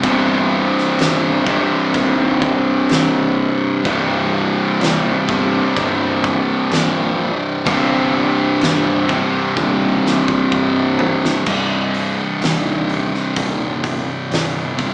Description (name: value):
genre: stoner and doom metal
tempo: 63 BPM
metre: 4/4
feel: straight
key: C minor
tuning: A4 = 441 Hz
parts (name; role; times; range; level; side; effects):
- biting overdriven guitar; riff; 0.0-11.4 s; C2 to C3; -21 LUFS; equal; none
- thick fuzz guitar; riff; 0.0-14.9 s; C2 to C3; -24 LUFS; equal; distortion
- thick fuzz guitar; riff; 0.0-14.9 s; C2 to C3; -24 LUFS; equal; distortion
- fuzz picked electric bass; bass; 0.0-14.9 s; C1 to Bb1; -27 LUFS; equal; overdrive
- oversized low-tuned drum kit; drums; 0.0-14.9 s; crash cymbal, hi-hat, kick drum, snare drum, toms; -25 LUFS; equal; none
room: light reverb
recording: band playing live in one room, small speaker sound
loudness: -17 LUFS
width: mono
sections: 0.0-11.5 A section; 11.5-14.9 B section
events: drum fill 9.6-11.5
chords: 0.0 Cm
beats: | 0.03 0.98 1.94 2.89 | 3.85 4.80 5.75 6.71 | 7.66 8.61 9.56 10.51 | 11.46 12.41 13.36 14.31